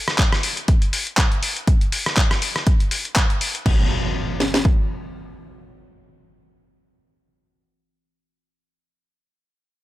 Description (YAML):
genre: filtered disco house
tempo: 121 BPM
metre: 4/4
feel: swing 56% on 16ths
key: none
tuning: none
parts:
  - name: dusty soul sampler-style drum kit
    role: drums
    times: 0.1-3.8 s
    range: crash cymbal, handclaps, hi-hat, rim click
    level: -22 LUFS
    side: left 1 dB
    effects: sidechain pumping on hats, sidechain pumping on cymbals
  - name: house drum kit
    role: drums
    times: 0.2-4.8 s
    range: kick drum, snare drum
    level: -17 LUFS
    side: equal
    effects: none
  - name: impact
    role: sound effects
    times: 3.7-8.0 s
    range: none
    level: -26 LUFS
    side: equal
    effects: none
room: digital ambience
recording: none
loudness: -17 LUFS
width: side -16 dB against mid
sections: 0.0-3.7 A section; 3.7-7.6 B section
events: none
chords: none